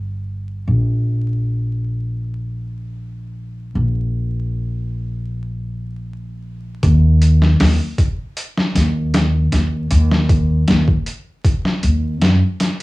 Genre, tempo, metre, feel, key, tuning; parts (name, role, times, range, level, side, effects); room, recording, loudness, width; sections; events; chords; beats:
trip hop; 78 BPM; 4/4; straight; A4 = 440 Hz
upright bass; bass; 0.0-12.4 s; G1 to Gb2; -17 LUFS; equal; tube saturation
boom bap sampler-style drum kit; drums; 6.8-12.8 s; hi-hat, kick drum, snare drum; -17 LUFS; equal; overdrive, cassette tape
little or no reverb; home recording on cassette, vinyl crackle, small room ambience; -15 LUFS; side -20 dB against mid
0.0-6.8 A section; 6.8-12.8 B section
| 0.68 1.45 2.22 2.99 | 3.75 4.52 5.29 6.06 | 6.83 7.60 8.37 9.14 | 9.91 10.68 11.45 12.22